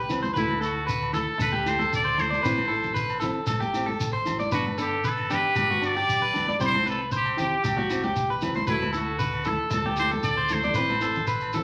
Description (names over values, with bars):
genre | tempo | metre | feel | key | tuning
highlife guitar band | 115 BPM | 4/4 | straight | unclear | A4 = 440 Hz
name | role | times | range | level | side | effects
electric guitar at the edge of break-up | arpeggios | 0.0-11.6 s | F#4 to D5 | -30 LUFS | equal | none
fingered electric bass | bass | 0.0-11.6 s | G1 to D2 | -39 LUFS | equal | none
flamenco guitar | accompaniment | 0.1-11.6 s | E3 to E4 | -35 LUFS | equal | none
agogo bells | percussion | 0.1-11.5 s | none | -42 LUFS | equal | none
congas | percussion | 0.1-11.6 s | none | -37 LUFS | equal | none
shekere | percussion | 0.1-11.6 s | none | -36 LUFS | equal | none
trumpet with straight mute | melody | 0.4-11.6 s | E4 to D5 | -29 LUFS | equal | none
room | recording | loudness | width
wet large studio reverb, RT60 1.1 s | vinyl crackle | -25 LUFS | mono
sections
0.0-11.6 A section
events
none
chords
0.4 Dadd9; 2.4 Am; 4.5 G; 6.6 C; 8.7 Dadd9; 10.8 Am